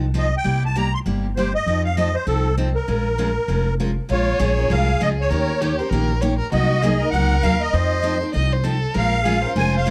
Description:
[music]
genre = acoustic string swing (jazz manouche)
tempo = 198 BPM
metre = 4/4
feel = swing 60% on 8ths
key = Bb harmonic minor, Bb minor from 4.1 s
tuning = A4 = 440 Hz
[part]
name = picked steel-string acoustic guitar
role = accompaniment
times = 0.0-9.9 s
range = C3 to Bb4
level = -27 LUFS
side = equal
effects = none
[part]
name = upright bass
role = bass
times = 0.0-9.9 s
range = F1 to F2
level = -24 LUFS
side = equal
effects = none
[part]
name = musette accordion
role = melody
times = 0.2-9.9 s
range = A4 to C6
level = -25 LUFS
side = equal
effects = none
[part]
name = warm violin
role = second line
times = 4.1-9.9 s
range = F4 to Eb5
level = -28 LUFS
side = equal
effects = none
[sound]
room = small room reverb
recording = dry, close 1970s-style studio recording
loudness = -20 LUFS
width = mono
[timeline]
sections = 0.0-4.1 A section; 4.1-9.9 B section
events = none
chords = 0.5 C7; 1.7 F7; 2.9 Bbm7; 5.3 Eb7; 6.5 Cm7b5; 7.7 F7; 9.0 Bbm7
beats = 0.15 | 0.45 0.76 1.06 1.36 | 1.67 1.97 2.27 2.58 | 2.88 3.18 3.48 3.79 | 4.09 4.39 4.70 5.00 | 5.30 5.61 5.91 6.21 | 6.52 6.82 7.13 7.43 | 7.73 8.04 8.34 8.65 | 8.95 9.26 9.56 9.87

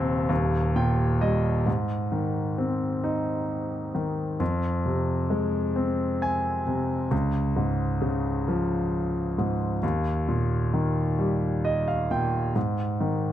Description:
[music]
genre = pop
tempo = 44 BPM (dotted quarters)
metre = 6/8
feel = straight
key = Ab major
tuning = A4 = 439 Hz
[part]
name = clear grand piano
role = solo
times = 0.0-13.3 s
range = Eb1 to Ab5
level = -24 LUFS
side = equal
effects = none
[sound]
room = small room reverb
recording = dry, close 1970s-style studio recording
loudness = -24 LUFS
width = side -12 dB against mid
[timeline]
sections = 0.0-1.7 A section; 1.7-13.3 B section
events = grand piano fill 0.3-1.7, 5.8-7.1, 11.2-12.6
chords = 0.3 Eb; 1.7 Ab; 4.4 Fm; 7.1 Db; 9.8 Eb; 12.6 Ab5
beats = 0.30 | 1.67 3.04 | 4.41 5.77 | 7.12 8.48 | 9.83 11.19 | 12.56

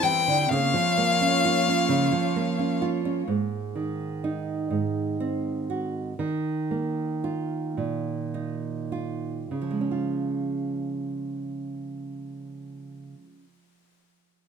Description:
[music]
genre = acoustic folk-pop ballad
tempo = 33-43 BPM (dotted quarters)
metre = 6/8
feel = straight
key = Db major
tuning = A4 = 440 Hz
[part]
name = clear violin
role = melody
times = 0.0-2.8 s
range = F5 to G5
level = -23 LUFS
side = left 6 dB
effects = none
[part]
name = nylon-string guitar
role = accompaniment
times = 0.0-13.5 s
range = Ab2 to G4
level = -27 LUFS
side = right 4 dB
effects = none
[part]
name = warm studio string section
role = sustained chords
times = 0.0-3.3 s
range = E2 to Db5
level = -30 LUFS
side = left 2 dB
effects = none
[sound]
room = moderate studio reverb, RT60 0.8 s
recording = none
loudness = -24 LUFS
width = side -6 dB against mid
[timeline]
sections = 0.0-3.3 A section; 3.3-9.5 B section; 9.5-13.2 C section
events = slowing down 3.3-9.5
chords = 0.5 Db6; 3.3 Ab; 6.2 Ebsus2; 9.5 Db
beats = | 0.49 1.89 | 3.29 4.71 | 6.18 7.76 | 9.49 11.33

